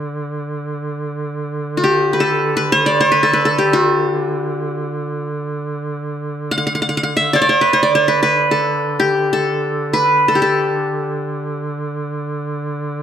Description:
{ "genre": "Arabic maqam ensemble", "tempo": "free time", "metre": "none", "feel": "none", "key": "D maqam rast", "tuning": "A4 = 439 Hz", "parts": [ { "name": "clear duduk", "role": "drone", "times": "0.0-13.0 s", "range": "D3", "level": "-24 LUFS", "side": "right 1 dB", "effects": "none" }, { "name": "qanun", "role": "melody", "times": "1.8-12.2 s", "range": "F#4-50c to F#5-50c", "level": "-14 LUFS", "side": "equal", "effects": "none" } ], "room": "light reverb", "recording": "close, detailed microphones", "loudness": "-15 LUFS", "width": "side -9 dB against mid", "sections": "0.0-13.0 A section", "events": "none", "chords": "none" }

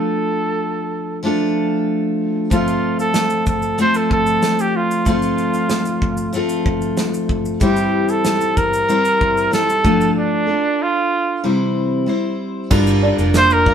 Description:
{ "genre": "acoustic pop", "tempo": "94 BPM", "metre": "4/4", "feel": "straight", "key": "F major", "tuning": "A4 = 440 Hz", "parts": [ { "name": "clear trumpet", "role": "melody", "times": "0.0-13.7 s", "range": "D4 to C5", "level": "-18 LUFS", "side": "right 1 dB", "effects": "none" }, { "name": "picked steel-string acoustic guitar", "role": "accompaniment", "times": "0.0-13.7 s", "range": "C3 to C5", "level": "-18 LUFS", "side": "left 1 dB", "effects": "none" }, { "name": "modern studio drum kit", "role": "drums", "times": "2.5-13.7 s", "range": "crash cymbal, kick drum, shaker, snare drum", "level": "-22 LUFS", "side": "equal", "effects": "none" }, { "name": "open-back banjo", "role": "arpeggios", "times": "12.7-13.7 s", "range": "D3 to F4", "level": "-22 LUFS", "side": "right 3 dB", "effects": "tape echo" }, { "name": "vintage muted fingered electric bass", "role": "bass", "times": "12.7-13.7 s", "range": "F1 to G1", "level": "-18 LUFS", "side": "right 1 dB", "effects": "none" } ], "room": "wet studio reverb, RT60 0.7 s", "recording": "band playing live in one room", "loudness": "-15 LUFS", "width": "side -8 dB against mid", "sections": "0.0-12.7 A section; 12.7-13.7 B section", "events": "break 10.2-12.7", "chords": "0.0 Dm/F; 2.5 F; 7.6 C/E; 9.8 Dm/F; 11.4 C; 12.7 Gm7" }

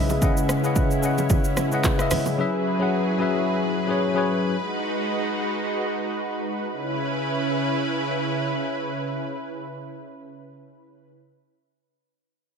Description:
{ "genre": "amapiano", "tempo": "111 BPM", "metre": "4/4", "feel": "swing 55% on 16ths", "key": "C# minor", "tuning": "A4 = 440 Hz", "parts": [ { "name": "tine electric piano", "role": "accompaniment", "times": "0.0-4.6 s", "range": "C#3 to F#5", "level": "-23 LUFS", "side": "left 3 dB", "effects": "wide subtle chorus" }, { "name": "lush unison pad", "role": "sustained chords", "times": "0.0-11.1 s", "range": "C#3 to B4", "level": "-26 LUFS", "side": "right 1 dB", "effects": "chorus, sidechain pumping" }, { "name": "deep house drum kit", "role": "drums", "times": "0.1-2.4 s", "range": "handclaps, hi-hat, kick drum, rim click, shaker", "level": "-23 LUFS", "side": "equal", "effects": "overdrive" }, { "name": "bongos and congas", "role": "percussion", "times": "0.1-2.4 s", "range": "none", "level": "-29 LUFS", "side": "right 8 dB", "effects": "none" } ], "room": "light reverb, digital ambience", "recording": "none", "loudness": "-22 LUFS", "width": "side -6 dB against mid", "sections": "0.0-6.7 A section; 6.7-11.0 B section", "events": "none", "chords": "0.0 C#m7; 2.4 F#9sus4; 4.5 G#m7; 6.7 C#m7" }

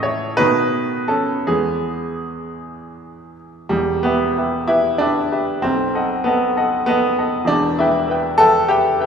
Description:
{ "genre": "classical, romantic character piece for solo piano", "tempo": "52-67 BPM (dotted quarters)", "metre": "6/8", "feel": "rubato", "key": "E major, E minor from 3.7 s", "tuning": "A4 = 441 Hz", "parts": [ { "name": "clear baby grand piano", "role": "solo", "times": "0.0-9.1 s", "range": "E1 to G5", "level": "-16 LUFS", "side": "equal", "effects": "none" } ], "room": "wet recital hall reverb, RT60 1.5 s", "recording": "recorded in a church or concert hall", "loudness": "-16 LUFS", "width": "side -7 dB against mid", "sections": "0.0-3.7 A section; 3.7-9.1 B section", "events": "none", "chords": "0.4 B7; 1.5 E; 3.7 Em; 5.6 B7; 7.5 Em" }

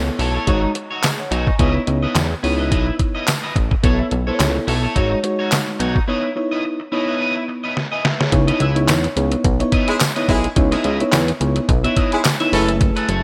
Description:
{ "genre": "early-eighties boogie funk", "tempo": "107 BPM", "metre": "4/4", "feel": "swing 56% on 16ths", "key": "C# minor", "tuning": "A4 = 440 Hz", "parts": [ { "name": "mellow FM electric piano", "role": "accompaniment", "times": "0.0-13.1 s", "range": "G#3 to C#6", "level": "-24 LUFS", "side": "equal", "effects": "chorus" }, { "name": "fat analog bass", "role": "bass", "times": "0.0-13.2 s", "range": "F#1 to E2", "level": "-22 LUFS", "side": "equal", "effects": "none" }, { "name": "electric guitar at the edge of break-up", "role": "riff", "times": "0.1-13.2 s", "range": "D#4 to E5", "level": "-27 LUFS", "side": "equal", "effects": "lush chorus" }, { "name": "detuned 8-bit digital drum machine", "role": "drums", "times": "0.2-13.2 s", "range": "handclaps, hi-hat, kick drum, snare drum", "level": "-22 LUFS", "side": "equal", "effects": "none" }, { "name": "tambourine", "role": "percussion", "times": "1.0-12.4 s", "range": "none", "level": "-31 LUFS", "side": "equal", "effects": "none" }, { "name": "warm horn section", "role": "second line", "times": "9.9-12.7 s", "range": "G#3 to A4", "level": "-27 LUFS", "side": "equal", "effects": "digital delay" } ], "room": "light reverb", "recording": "bright 1980s-style digital production", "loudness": "-18 LUFS", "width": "mono", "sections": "0.0-8.3 A section; 8.3-13.2 B section", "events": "break 6.1-8.3; drum fill 7.8-8.3", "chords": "0.5 G#7sus4; 1.6 C#m9; 3.8 B9sus4; 5.0 G#7sus4; 6.1 C#m9; 12.5 F#m11" }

